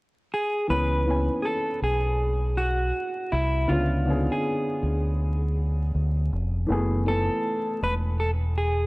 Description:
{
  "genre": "hip hop",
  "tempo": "80 BPM",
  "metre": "4/4",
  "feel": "swing 65% on 16ths",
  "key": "unclear",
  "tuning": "A4 = 440 Hz",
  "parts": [
    { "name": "clean electric guitar", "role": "melody", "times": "0.3-8.9 s", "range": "E4 to B4", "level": "-27 LUFS", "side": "equal", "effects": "low-pass filter, tape echo" },
    { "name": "dark upright piano", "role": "accompaniment", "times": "0.7-8.9 s", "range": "D3 to G#5", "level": "-30 LUFS", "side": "left 1 dB", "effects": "cassette tape, low-pass filter" },
    { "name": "deep dub fingered electric bass", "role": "bass", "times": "0.7-8.9 s", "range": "E1 to D2", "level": "-24 LUFS", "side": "equal", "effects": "none" }
  ],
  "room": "light reverb, small room ambience",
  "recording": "worn, warbling old tape, cassette tape, vinyl crackle, warbly pitch drift",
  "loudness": "-23 LUFS",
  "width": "side -23 dB against mid",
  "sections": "0.7-8.9 A section",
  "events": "none",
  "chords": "0.0 N.C.; 0.7 C#m7; 3.7 C#7b9; 6.7 F#m11"
}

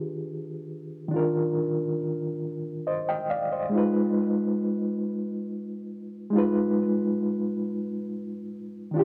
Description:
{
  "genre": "R&B",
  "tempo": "46 BPM (dotted quarters)",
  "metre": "6/8",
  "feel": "straight",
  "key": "unclear",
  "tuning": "A4 = 440 Hz",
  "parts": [
    { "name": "reed electric piano", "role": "solo", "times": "0.0-9.0 s", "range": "Eb3 to G5", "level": "-28 LUFS", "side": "equal", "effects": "fast tremolo, analog delay" }
  ],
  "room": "little or no reverb",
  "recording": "dry, gritty hardware recording, cassette tape, small room ambience",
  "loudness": "-28 LUFS",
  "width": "mono",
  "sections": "0.0-9.0 A section",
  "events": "none",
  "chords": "0.0 Ebmaj9; 3.7 Abm6"
}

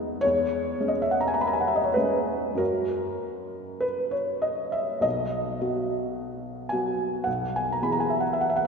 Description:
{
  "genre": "classical, romantic nocturne for solo piano",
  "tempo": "48-56 BPM",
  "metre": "4/4",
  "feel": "rubato",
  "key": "B major",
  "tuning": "A4 = 442 Hz",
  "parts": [
    { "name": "felt-muted upright piano", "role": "solo", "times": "0.0-8.7 s", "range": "B1 to B5", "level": "-24 LUFS", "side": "equal", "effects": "none" }
  ],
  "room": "wet church reverb, RT60 3.1 s",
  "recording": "minimal, uncompressed stereo recording",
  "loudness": "-24 LUFS",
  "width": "side -5 dB against mid",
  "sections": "0.0-8.7 A section",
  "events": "none",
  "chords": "0.2 C#m/E; 2.6 F#; 5.0 B; 7.3 E/B"
}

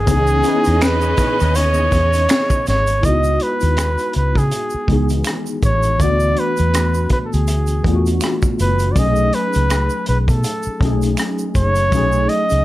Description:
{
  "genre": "R&B, neo-soul",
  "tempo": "81 BPM",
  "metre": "4/4",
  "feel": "swing 56% on 16ths",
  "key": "C# minor",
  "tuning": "A4 = 438 Hz",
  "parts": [
    { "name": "warm flugelhorn", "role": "melody", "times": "0.0-12.6 s", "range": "G#4 to D#5", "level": "-19 LUFS", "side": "right 1 dB", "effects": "slapback echo" },
    { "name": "tine electric piano", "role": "accompaniment", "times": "0.0-12.6 s", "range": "D#3 to B4", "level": "-22 LUFS", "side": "left 2 dB", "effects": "ensemble chorus" },
    { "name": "warm symphonic string section", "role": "sustained chords", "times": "0.0-3.0 s", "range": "C#3 to D#5", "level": "-25 LUFS", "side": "equal", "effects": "none" },
    { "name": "vintage muted fingered electric bass", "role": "bass", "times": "0.0-12.6 s", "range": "F#1 to C#3", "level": "-17 LUFS", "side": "equal", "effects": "none" },
    { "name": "crunchy breakbeat drum kit", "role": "drums", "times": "0.1-12.6 s", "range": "finger snaps, hi-hat, kick drum, rim click, snare drum", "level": "-21 LUFS", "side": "equal", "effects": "none" },
    { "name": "tube shaker and finger snaps", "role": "percussion", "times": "0.1-12.6 s", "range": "none", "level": "-31 LUFS", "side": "right 6 dB", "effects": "none" }
  ],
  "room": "light reverb",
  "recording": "none",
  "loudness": "-14 LUFS",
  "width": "side -16 dB against mid",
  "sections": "0.0-3.0 A section; 3.0-12.6 B section",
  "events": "none",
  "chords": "0.1 C#m9; 3.0 C#m11; 6.0 D6; 9.0 B13"
}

